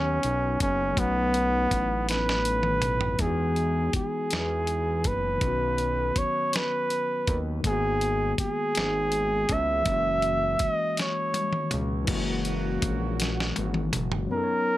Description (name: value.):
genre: slow six-eight R&B.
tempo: 54 BPM (dotted quarters).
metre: 6/8.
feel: straight.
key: B major.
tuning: A4 = 440 Hz.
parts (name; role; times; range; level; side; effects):
warm flugelhorn; melody; 0.0-14.8 s; B3 to E5; -26 LUFS; right 1 dB; none.
overdriven tine electric piano; accompaniment; 0.0-14.8 s; D#3 to C#5; -32 LUFS; left 4 dB; none.
fat analog bass; bass; 0.0-14.3 s; F#1 to E2; -30 LUFS; equal; none.
dusty soul sampler-style drum kit; drums; 0.2-14.3 s; crash cymbal, hi-hat, kick drum, snare drum, toms; -29 LUFS; equal; none.
mellow horn section; stabs; 12.1-13.9 s; C#3 to F#4; -37 LUFS; right 7 dB; tape echo.
room: light reverb.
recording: none.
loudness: -24 LUFS.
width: side -15 dB against mid.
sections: 0.0-3.2 A section; 3.2-12.1 B section; 12.1-14.3 C section.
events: drum fill 2.1-3.2, 11.0-12.1, 13.2-14.3.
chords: 0.0 Bmaj9; 1.0 B7; 3.2 Emaj9; 5.4 Badd9; 7.6 G#m9; 9.9 F#9.